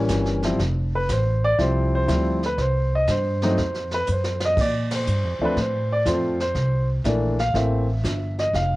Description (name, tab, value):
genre	jazz piano trio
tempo	121 BPM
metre	4/4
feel	swing 69% on 8ths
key	unclear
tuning	A4 = 439 Hz
part	warm concert grand piano	melody	0.0-8.8 s	E3 to F5	-23 LUFS	equal	none
part	upright bass	bass	0.0-8.8 s	F1 to Bb2	-23 LUFS	equal	none
part	jazz brush drum kit	drums	0.1-8.8 s	brushed snare drum, crash cymbal, hi-hat, kick drum, ride cymbal, snare drum	-31 LUFS	equal	cassette tape
room	moderate spring reverb, RT60 1.4 s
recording	home recording on cassette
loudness	-20 LUFS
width	side -18 dB against mid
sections	0.0-8.8 A section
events	drum fill 4.1-4.6; band accent 4.8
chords	0.0 A7b9 (rootless); 0.6 Dm11; 2.6 Cm; 3.6 Ebm69/F (rootless); 4.6 Bbmaj9; 6.6 C13